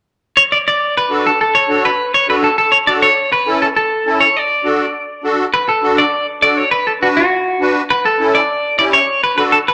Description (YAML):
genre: latin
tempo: 203 BPM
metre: 4/4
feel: straight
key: D major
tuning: A4 = 440 Hz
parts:
  - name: clean electric guitar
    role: melody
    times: 0.4-9.7 s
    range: F#4 to D5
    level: -15 LUFS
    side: equal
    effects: spring reverb
  - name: musette accordion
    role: accompaniment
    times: 1.1-9.6 s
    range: C#4 to B4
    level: -20 LUFS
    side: equal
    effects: none
room: wet club reverb, RT60 0.8 s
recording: none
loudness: -14 LUFS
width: mono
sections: 0.8-5.5 A section; 5.5-9.7 B section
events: none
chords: 0.0 N.C.; 0.8 D; 3.2 A; 4.4 D; 7.9 A7; 9.1 D